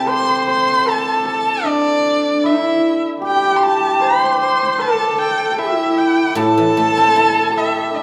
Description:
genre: chinese traditional, Chinese chamber ensemble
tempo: 76 BPM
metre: 4/4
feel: rubato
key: unclear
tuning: A4 = 441 Hz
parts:
  - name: clear erhu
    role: melody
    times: 0.0-8.0 s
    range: D5 to C6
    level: -20 LUFS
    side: equal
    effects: none
  - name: hammered dulcimer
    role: second line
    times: 0.0-8.0 s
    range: C4 to C5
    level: -23 LUFS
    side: equal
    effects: none
  - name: rich horsehead fiddle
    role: second line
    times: 0.0-8.0 s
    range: D4 to C5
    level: -21 LUFS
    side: equal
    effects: none
  - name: guzheng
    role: accompaniment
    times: 0.0-0.9, 6.4-8.0 s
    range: A2 to E4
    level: -22 LUFS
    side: equal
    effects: none
room: wet recital hall reverb, RT60 1.5 s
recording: none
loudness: -16 LUFS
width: mono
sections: 0.0-8.0 A section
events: none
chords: none

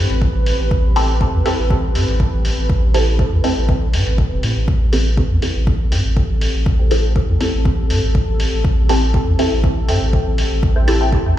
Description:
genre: dub techno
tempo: 121 BPM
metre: 4/4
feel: straight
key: A minor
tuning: A4 = 441 Hz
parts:
  - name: deep dark ambient pad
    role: sustained chords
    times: 0.0-11.4 s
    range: C4 to B4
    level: -25 LUFS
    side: left 1 dB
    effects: chorus, built-in reverb, sidechain pumping
  - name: soft dub sub bass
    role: bass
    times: 0.0-11.3 s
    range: E1 to A2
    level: -17 LUFS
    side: equal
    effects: tube saturation, sidechain pumping
  - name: electronic hi-hat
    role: drums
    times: 0.1-11.0 s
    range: none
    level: -28 LUFS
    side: equal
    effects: dub echo
  - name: electronic kick drum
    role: drums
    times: 0.2-11.2 s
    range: none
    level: -18 LUFS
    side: equal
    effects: overdrive
  - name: filtered dub chord stab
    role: stabs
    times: 1.0-11.0 s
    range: C4 to A4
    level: -23 LUFS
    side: equal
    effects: phaser, sidechain pumping, dub echo
  - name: filtered dub chord stab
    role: riff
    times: 5.9-11.1 s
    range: A4 to G5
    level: -27 LUFS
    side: left 1 dB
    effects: phaser, lush chorus, sidechain pumping, dub echo
room: little or no reverb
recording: played on a big sound system in a bare room, stone room reverb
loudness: -14 LUFS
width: side -12 dB against mid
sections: 0.0-4.7 A section; 4.7-11.4 A section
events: none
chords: 0.0 Am7

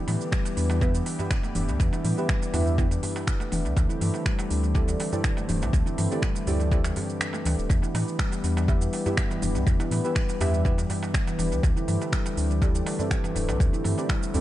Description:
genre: afro house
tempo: 122 BPM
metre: 4/4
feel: straight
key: E minor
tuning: A4 = 441 Hz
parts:
  - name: warm analog pad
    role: sustained chords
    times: 0.0-14.4 s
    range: D3 to G4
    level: -34 LUFS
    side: left 2 dB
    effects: chorus, sidechain pumping
  - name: handpan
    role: arpeggios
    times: 0.0-14.4 s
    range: E3 to E4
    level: -31 LUFS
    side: equal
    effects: sidechain pumping, dub echo
  - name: warm sub bass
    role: bass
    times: 0.1-14.4 s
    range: D1 to A2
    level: -27 LUFS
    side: equal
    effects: sidechain pumping
  - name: afro-pop drum kit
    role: drums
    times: 0.1-14.4 s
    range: finger snaps, hi-hat, shaker, toms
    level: -32 LUFS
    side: equal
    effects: tape echo
  - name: darbuka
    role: percussion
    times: 0.1-14.4 s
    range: none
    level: -36 LUFS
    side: right 1 dB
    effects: tape echo
  - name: electronic kick drum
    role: drums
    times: 0.3-14.2 s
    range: none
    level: -25 LUFS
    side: equal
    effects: none
  - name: deep mellow chord stab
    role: stabs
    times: 0.8-14.4 s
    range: B3 to E5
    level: -34 LUFS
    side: right 2 dB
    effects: chorus, sidechain pumping, tape echo
room: digital ambience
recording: echo-heavy mix, nothing above 10.4 kHz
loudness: -23 LUFS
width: side -14 dB against mid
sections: 0.0-14.4 A section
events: kick drops out 7.2-7.7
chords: 0.0 Em; 3.8 D7sus4; 7.7 Em; 11.6 D7sus4

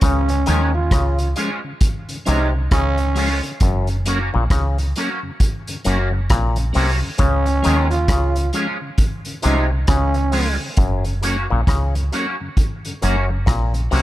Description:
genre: roots reggae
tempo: 67 BPM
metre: 4/4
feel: swing 61% on 16ths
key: Db major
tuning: A4 = 438 Hz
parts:
  - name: growling trombone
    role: second line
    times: 0.0-10.6 s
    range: Db4 to F4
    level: -24 LUFS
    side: right 3 dB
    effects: dub echo
  - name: auto-wah clav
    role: riff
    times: 0.0-14.0 s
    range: Gb2 to Eb3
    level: -26 LUFS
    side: left 5 dB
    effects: none
  - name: deep dub fingered electric bass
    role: bass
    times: 0.0-14.0 s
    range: Gb1 to Eb2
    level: -19 LUFS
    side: equal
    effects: none
  - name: vintage drum kit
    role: drums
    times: 0.0-14.0 s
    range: hi-hat, kick drum, rim click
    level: -20 LUFS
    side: equal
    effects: none
  - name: tonewheel organ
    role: accompaniment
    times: 0.3-14.0 s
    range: Gb2 to Db4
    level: -28 LUFS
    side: left 2 dB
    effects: overdrive, stopped rotary speaker
  - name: electric guitar with an envelope filter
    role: accompaniment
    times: 0.5-14.0 s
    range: F3 to Gb4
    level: -27 LUFS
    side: right 2 dB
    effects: ensemble chorus, dub echo
room: little or no reverb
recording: none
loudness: -16 LUFS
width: side -15 dB against mid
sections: 0.0-14.0 A section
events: none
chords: 0.0 Db; 3.6 Gb; 7.2 Db; 10.8 Gb

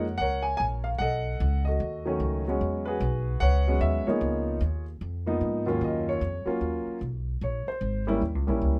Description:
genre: jazz piano trio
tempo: 150 BPM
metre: 4/4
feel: swing 64% on 8ths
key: unclear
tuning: A4 = 440 Hz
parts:
  - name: warm concert grand piano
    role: melody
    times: 0.0-8.8 s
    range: D#2 to G#5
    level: -30 LUFS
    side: equal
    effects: none
  - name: upright bass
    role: bass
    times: 0.0-8.8 s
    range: Ab1 to G#2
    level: -31 LUFS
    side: equal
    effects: none
room: light reverb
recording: none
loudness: -28 LUFS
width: mono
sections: 0.0-5.8 A section; 5.8-8.8 B section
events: grand piano solo 5.8-8.8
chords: 0.0 F#maj7; 1.0 B9; 2.6 E69; 4.2 C#13; 5.8 Ebm9; 7.4 Bbm7; 8.2 Eb7b9

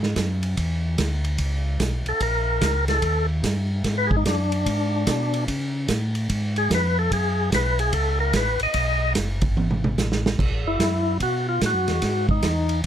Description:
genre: soul jazz organ trio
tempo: 147 BPM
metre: 4/4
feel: swing 65% on 8ths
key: unclear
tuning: A4 = 440 Hz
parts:
  - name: mellow tonewheel organ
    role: bass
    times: 0.0-12.9 s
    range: F#1 to C#3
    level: -24 LUFS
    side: equal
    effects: overdrive, chorus vibrato, slow rotary speaker
  - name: vintage drum kit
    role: drums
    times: 0.0-12.9 s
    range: crash cymbal, hi-hat, kick drum, ride cymbal, snare drum, toms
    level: -26 LUFS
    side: right 2 dB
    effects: none
  - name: percussive tonewheel organ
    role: melody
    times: 2.1-12.8 s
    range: D4 to D#5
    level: -23 LUFS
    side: left 2 dB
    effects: slow rotary speaker
room: little or no reverb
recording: none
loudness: -20 LUFS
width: side -10 dB against mid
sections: 0.0-10.4 A section; 10.4-12.9 A section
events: tonewheel organ solo 0.0-10.4, 10.4-12.9; drum fill 9.6-10.4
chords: 0.0 F#sus2; 0.6 Bmadd9; 2.2 A#mmaj7; 3.0 D#; 3.8 G#m7; 5.5 C#; 7.1 F#m; 8.7 B7; 10.4 B7sus4; 12.0 G#7(no3)

